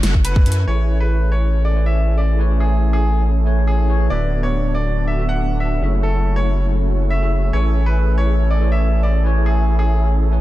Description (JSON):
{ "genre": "future bass", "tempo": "140 BPM", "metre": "4/4", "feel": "swing 54% on 16ths, half-time", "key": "A major", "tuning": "A4 = 440 Hz", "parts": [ { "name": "supersaw chords", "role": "riff", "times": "0.0-10.4 s", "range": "A3 to G#5", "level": "-27 LUFS", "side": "equal", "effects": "wide subtle chorus, cassette tape, sidechain pumping, low-pass filter" }, { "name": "saturated sub bass", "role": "bass", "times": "0.0-10.4 s", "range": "D1 to F#2", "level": "-16 LUFS", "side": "equal", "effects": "sidechain pumping" }, { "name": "big-room dance drum kit", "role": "drums", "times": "0.0-0.6 s", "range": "hi-hat, snare drum", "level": "-23 LUFS", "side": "equal", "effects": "none" }, { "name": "bright concert grand piano", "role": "melody", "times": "0.2-10.1 s", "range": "G#4 to F#5", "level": "-26 LUFS", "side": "equal", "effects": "sidechain pumping, ping-pong delay" }, { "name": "tine electric piano", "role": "accompaniment", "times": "0.7-10.4 s", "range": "D3 to G#5", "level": "-27 LUFS", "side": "right 1 dB", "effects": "lush chorus, sidechain pumping" }, { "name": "airy breathy pad", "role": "sustained chords", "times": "0.7-10.4 s", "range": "D3 to F#4", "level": "-32 LUFS", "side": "left 1 dB", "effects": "none" } ], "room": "little or no reverb", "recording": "dark, warm production", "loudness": "-15 LUFS", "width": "side -15 dB against mid", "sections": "0.7-10.4 A section", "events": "none", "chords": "0.0 F#m7; 0.7 Amaj7; 4.1 D6; 5.8 F#m7; 7.5 Amaj7", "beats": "0.25 | 0.68 1.10 1.53 1.96 | 2.39 2.82 3.25 3.67 | 4.10 4.53 4.96 5.39 | 5.82 6.25 6.67 7.10 | 7.53 7.96 8.39 8.82 | 9.25 9.68 10.10" }